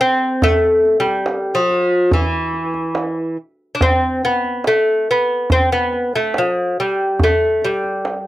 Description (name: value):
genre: Persian modal ensemble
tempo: 71 BPM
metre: 4/4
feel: straight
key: E dastgah shur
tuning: A4 = 438 Hz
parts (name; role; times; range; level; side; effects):
- lute; melody; 0.0-8.3 s; E3 to D4; -15 LUFS; equal; none
- tombak; percussion; 0.4-8.3 s; none; -20 LUFS; right 1 dB; none
room: light reverb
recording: dry, close 1970s-style studio recording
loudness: -15 LUFS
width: side -15 dB against mid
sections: 0.0-3.8 A section; 3.8-8.3 B section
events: none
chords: none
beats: | 0.43 1.28 2.12 2.97 | 3.82 4.67 5.52 6.37 | 7.21 8.06